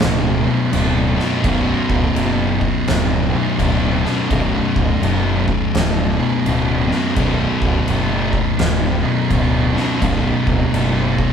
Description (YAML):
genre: stoner and doom metal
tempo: 84 BPM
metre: 4/4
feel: swing 63% on 8ths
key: B minor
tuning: A4 = 440 Hz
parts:
  - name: thick fuzz guitar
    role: riff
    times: 0.0-11.3 s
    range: B1 to B2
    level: -20 LUFS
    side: left 6 dB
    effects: distortion
  - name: thick fuzz guitar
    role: riff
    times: 0.0-11.3 s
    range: B1 to B2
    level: -20 LUFS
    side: right 4 dB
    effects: distortion
  - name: fuzz picked electric bass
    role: bass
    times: 0.0-11.2 s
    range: B0 to F#1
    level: -22 LUFS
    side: equal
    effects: overdrive
  - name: oversized low-tuned drum kit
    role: drums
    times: 0.0-11.3 s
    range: crash cymbal, kick drum, snare drum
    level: -22 LUFS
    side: equal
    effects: none
room: wet stone room reverb, RT60 1.3 s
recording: band playing live in one room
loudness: -15 LUFS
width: side -7 dB against mid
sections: 0.0-11.3 A section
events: none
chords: 0.0 Bm